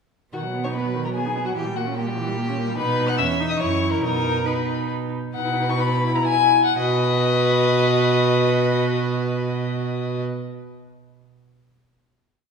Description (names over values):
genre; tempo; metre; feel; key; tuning
quick classical-period movement for string quartet; 118-149 BPM; 3/4; straight; B major; A4 = 441 Hz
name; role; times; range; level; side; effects
dark violin; melody; 0.3-10.2 s; D#5 to F#6; -24 LUFS; left 6 dB; none
rich violin; second line; 0.3-10.2 s; F#4 to F#5; -28 LUFS; left 2 dB; none
rich viola; accompaniment; 0.3-10.2 s; D#3 to F#4; -26 LUFS; right 1 dB; none
rich cello; bass; 0.3-10.2 s; E2 to B2; -24 LUFS; right 4 dB; none
room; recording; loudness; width
wet recital hall reverb, RT60 1.8 s; recorded in a church or concert hall; -19 LUFS; side -5 dB against mid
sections
0.3-5.3 A section; 5.3-6.8 coda; 6.8-9.8 final chord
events
slowing down 3.4-6.8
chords
0.3 B; 1.6 A#dim7; 2.8 B; 3.2 C#m/E; 3.6 F#5; 4.0 B; 6.0 E/B; 6.8 B